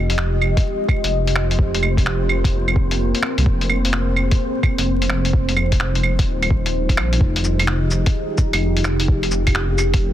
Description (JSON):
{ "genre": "future garage", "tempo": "128 BPM", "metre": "4/4", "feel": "swing 65% on 16ths", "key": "F minor", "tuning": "A4 = 441 Hz", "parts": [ { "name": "deep dark ambient pad", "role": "sustained chords", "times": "0.0-10.1 s", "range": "G3 to Eb5", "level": "-24 LUFS", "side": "equal", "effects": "chorus, built-in reverb, sidechain pumping" }, { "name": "dark detuned saw bass", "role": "bass", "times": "0.0-10.1 s", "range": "Eb1 to C2", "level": "-20 LUFS", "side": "equal", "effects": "sidechain pumping" }, { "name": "wind-like tuned noise texture", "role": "texture", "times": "0.8-7.2 s", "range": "C4 to C5", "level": "-31 LUFS", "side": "left 1 dB", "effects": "built-in reverb" }, { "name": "lo-fi sampler-style drum kit", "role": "drums", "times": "0.1-10.0 s", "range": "cabasa, claves, finger snaps, hi-hat", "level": "-23 LUFS", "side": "right 1 dB", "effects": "soft clipping on snare" }, { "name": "electronic kick drum", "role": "drums", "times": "0.6-10.0 s", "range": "none", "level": "-18 LUFS", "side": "equal", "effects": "none" } ], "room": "digital ambience", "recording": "dense, heavily limited modern master, vinyl crackle", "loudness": "-16 LUFS", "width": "side -12 dB against mid", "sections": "0.0-7.2 A section; 7.2-10.1 B section", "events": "none", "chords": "0.0 Fm9; 1.6 Fsus24; 3.5 Bbsus2/F; 5.3 Eb69; 7.2 Fm9; 9.1 Gm7b5/F", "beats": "0.18 0.65 1.12 | 1.59 2.05 2.52 2.99 | 3.46 3.93 4.40 4.87 | 5.34 5.80 6.27 6.74 | 7.21 7.68 8.15 8.62 | 9.09 9.55 10.02" }